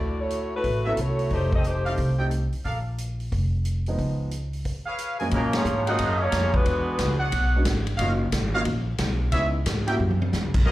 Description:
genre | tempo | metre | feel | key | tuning
jazz, big band swing | 180 BPM | 4/4 | swing 64% on 8ths | F# major from 5.3 s | A4 = 440 Hz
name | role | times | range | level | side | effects
mellow saxophone section | melody | 0.0-2.2, 5.3-7.2, 10.7 s | F#3 to Eb5 | -27 LUFS | left 1 dB | slapback echo
upright bass | bass | 0.0-10.7 s | F1 to A#2 | -25 LUFS | equal | none
swinging big-band drum kit | drums | 0.3-10.7 s | crash cymbal, hi-hat, kick drum, ride cymbal, snare drum, toms | -28 LUFS | equal | none
clear trumpet section | stabs | 0.8-2.8, 4.9-10.7 s | F#4 to Ab5 | -29 LUFS | right 1 dB | plate reverb, slapback echo
warm grand piano | accompaniment | 0.9-10.0 s | Gb2 to F#4 | -30 LUFS | right 1 dB | plate reverb, slapback echo
muted trombone section | second line | 5.3-7.2, 10.7 s | C#3 to D#4 | -29 LUFS | right 3 dB | slapback echo
room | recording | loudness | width
light reverb | live gig heard through the venue's PA, club reverb | -22 LUFS | side -16 dB against mid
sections
0.0-5.3 A section; 5.3-10.7 B section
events
band accent 5.5; drum fill 10.0-10.3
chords
0.0 Dmaj13; 1.3 F9; 2.6 Bb5; 4.0 Db7; 5.3 F#maj9; 6.7 E13; 8.0 D#m9; 9.3 C#m7; 10.0 F#7

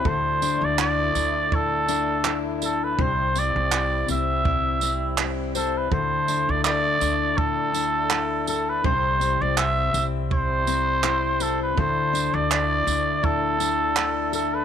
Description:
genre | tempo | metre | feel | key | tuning
acoustic pop | 82 BPM | 4/4 | swing 55% on 16ths | unclear | A4 = 443 Hz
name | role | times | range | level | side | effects
trumpet with cup mute | melody | 0.0-14.6 s | A4 to E5 | -23 LUFS | right 2 dB | none
fingerpicked steel-string acoustic guitar | accompaniment | 0.0-14.6 s | C3 to C5 | -27 LUFS | left 11 dB | none
tonewheel organ | sustained chords | 0.0-14.6 s | G3 to E4 | -35 LUFS | right 2 dB | overdrive, chorus vibrato, slow rotary speaker
upright bass | bass | 0.1-14.6 s | C2 to D2 | -30 LUFS | right 1 dB | none
compact cocktail drum kit | drums | 0.1-14.5 s | handclaps, kick drum, tambourine | -27 LUFS | right 5 dB | none
room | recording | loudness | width
light reverb, small room ambience | 1960s-style stereo | -20 LUFS | side -8 dB against mid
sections
0.0-14.6 A section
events
none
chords
0.1 Dsus2; 3.0 C; 5.9 Dsus2; 8.8 C; 11.8 Dsus2

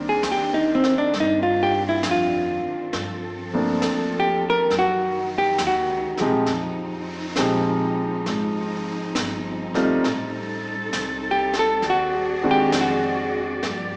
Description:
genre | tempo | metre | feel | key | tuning
jazz ballad | 67 BPM | 4/4 | swing 67% on 8ths | C minor | A4 = 444 Hz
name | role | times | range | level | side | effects
warm concert grand piano | accompaniment | 0.0-13.7 s | Eb3 to G4 | -28 LUFS | equal | none
dark symphonic cello section | sustained chords | 0.0-14.0 s | Eb3 to D5 | -32 LUFS | equal | none
upright bass | bass | 0.0-14.0 s | G1 to G2 | -36 LUFS | equal | none
hollow-body jazz guitar | melody | 0.1-13.4 s | C4 to Bb4 | -23 LUFS | equal | none
jazz brush drum kit | drums | 0.2-14.0 s | brushed snare drum, hi-hat, kick drum, snare drum | -34 LUFS | equal | none
room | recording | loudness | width
wet concert hall reverb, RT60 2.1 s | recorded in a church or concert hall, small speaker sound | -23 LUFS | mono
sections
0.0-14.0 A section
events
hollow-body jazz guitar solo 0.0-14.0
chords
0.0 Cm9; 2.9 Gm11; 4.7 F#69; 6.5 Fm7; 10.0 Am7b5; 11.8 Ab7#11

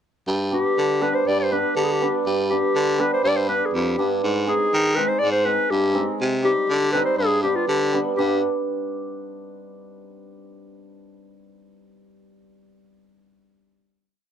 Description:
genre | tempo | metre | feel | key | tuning
klezmer | 122 BPM | 2/4 | straight | unclear | A4 = 440 Hz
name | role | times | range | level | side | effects
breathy baritone saxophone | bass | 0.3-8.4 s | F2 to Eb3 | -24 LUFS | right 1 dB | none
warm clarinet | melody | 0.5-8.4 s | F4 to D5 | -21 LUFS | left 2 dB | none
hammered dulcimer | accompaniment | 0.5-8.4 s | G3 to Eb4 | -25 LUFS | right 3 dB | none
room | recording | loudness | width
little or no reverb | close, detailed microphones | -19 LUFS | side -9 dB against mid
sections
0.3-8.2 A section; 8.2-9.2 final chord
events
none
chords
0.3 G; 4.2 Ab; 6.2 Cm; 7.2 G

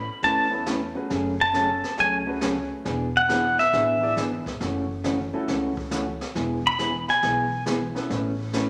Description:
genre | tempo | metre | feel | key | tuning
country, western swing | 137 BPM | 4/4 | swing 67% on 8ths | unclear | A4 = 440 Hz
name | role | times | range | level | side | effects
pedal steel guitar | melody | 0.0-7.6 s | E5 to B5 | -24 LUFS | equal | none
upright bass | bass | 0.0-8.7 s | E1 to E2 | -37 LUFS | equal | none
hollow-body jazz guitar | accompaniment | 0.2-8.7 s | C#3 to B4 | -30 LUFS | equal | none
jazz brush drum kit | drums | 0.2-8.7 s | brushed snare drum, hi-hat, kick drum, snare drum | -36 LUFS | equal | none
warm upright piano | accompaniment | 0.5-8.1 s | A3 to D5 | -35 LUFS | equal | none
room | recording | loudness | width
wet large studio reverb, RT60 1.2 s | none | -24 LUFS | mono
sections
0.0-8.7 A section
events
pedal steel guitar solo 0.0-8.7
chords
0.0 Aadd9; 1.1 F#madd9; 2.9 E7; 4.6 F#m7; 6.4 E; 8.1 Aadd9

